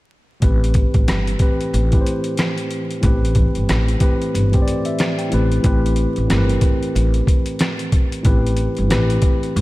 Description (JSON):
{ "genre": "hip hop, boom-bap hip-hop", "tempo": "92 BPM", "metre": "4/4", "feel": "swing 62% on 16ths", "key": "A minor", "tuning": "A4 = 441 Hz", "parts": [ { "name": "mellow tine electric piano", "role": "accompaniment", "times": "0.4-9.6 s", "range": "A2 to G5", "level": "-21 LUFS", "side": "equal", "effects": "high-pass filter, low-pass filter" }, { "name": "upright bass", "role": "bass", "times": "0.4-9.6 s", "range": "G1 to A1", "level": "-19 LUFS", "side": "equal", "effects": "none" }, { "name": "boom bap sampler-style drum kit", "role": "drums", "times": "0.4-9.6 s", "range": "hi-hat, kick drum, rim click, snare drum", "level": "-18 LUFS", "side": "equal", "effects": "none" } ], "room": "light reverb, digital ambience", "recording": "vinyl crackle", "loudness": "-15 LUFS", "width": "side -18 dB against mid", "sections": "0.4-5.6 A section; 5.6-9.6 B section", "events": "none", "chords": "0.4 Am9", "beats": "| 0.42 1.07 1.73 2.38 | 3.03 3.68 4.34 4.99 | 5.64 6.29 6.95 7.60 | 8.25 8.90 9.55" }